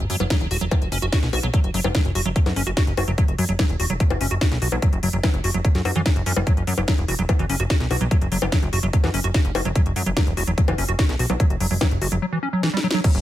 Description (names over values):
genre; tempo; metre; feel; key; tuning
psychedelic trance; 146 BPM; 4/4; straight; unclear; A4 = 440 Hz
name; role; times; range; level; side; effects
plucky analog bass; bass; 0.0-13.2 s; E1 to F#2; -24 LUFS; equal; none
techno drum kit; drums; 0.0-13.2 s; bongos, crash cymbal, hi-hat, snare drum; -26 LUFS; left 2 dB; overdrive, small room ambience
liquid acid bass; riff; 0.1-13.1 s; E3 to F#4; -26 LUFS; equal; chorus, auto-pan, cassette tape, sidechain pumping, digital delay
electronic kick drum; drums; 0.3-13.1 s; none; -19 LUFS; equal; small room ambience
room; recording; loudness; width
digital ambience; none; -18 LUFS; side -13 dB against mid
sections
0.0-13.0 A section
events
drum fill 12.6-13.0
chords
0.0 F#5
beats
0.30 0.71 1.12 | 1.54 1.95 2.36 2.77 | 3.18 3.59 4.00 4.41 | 4.82 5.24 5.65 6.06 | 6.47 6.88 7.29 7.70 | 8.11 8.52 8.93 9.35 | 9.76 10.17 10.58 10.99 | 11.40 11.81 12.22 12.63 | 13.04